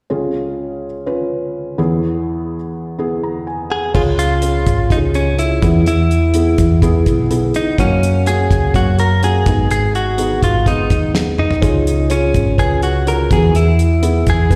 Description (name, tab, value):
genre	piano-driven pop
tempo	125 BPM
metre	4/4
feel	straight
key	unclear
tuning	A4 = 440 Hz
part	felt-muted upright piano	accompaniment	0.1-14.6 s	C#2 to A#5	-22 LUFS	equal	slapback echo
part	direct-recorded clean electric guitar	melody	3.7-14.6 s	C#4 to A#4	-21 LUFS	equal	slapback echo, delay
part	hollow-body short-scale fingered electric bass	bass	3.9-14.6 s	G#1 to F#2	-18 LUFS	equal	none
part	damped 70s drum kit	drums	3.9-14.6 s	crash cymbal, hi-hat, kick drum, snare drum, toms	-20 LUFS	equal	none
room	light reverb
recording	live gig heard through the venue's PA, recital hall reverb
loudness	-15 LUFS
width	mono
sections	0.1-3.9 A section; 3.9-14.6 B section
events	felt piano fill 3.0-3.9; drum fill 11.1-11.6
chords	0.1 C#; 1.8 E; 3.9 C#; 5.6 E; 7.8 F#; 9.5 G#m; 11.6 C#; 13.3 E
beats	| 0.10 0.58 1.06 1.54 | 2.03 2.51 2.99 3.47 | 3.95 4.43 4.91 5.39 | 5.87 6.35 6.83 7.31 | 7.79 8.27 8.75 9.23 | 9.71 10.19 10.66 11.14 | 11.62 12.11 12.59 13.06 | 13.54 14.03 14.51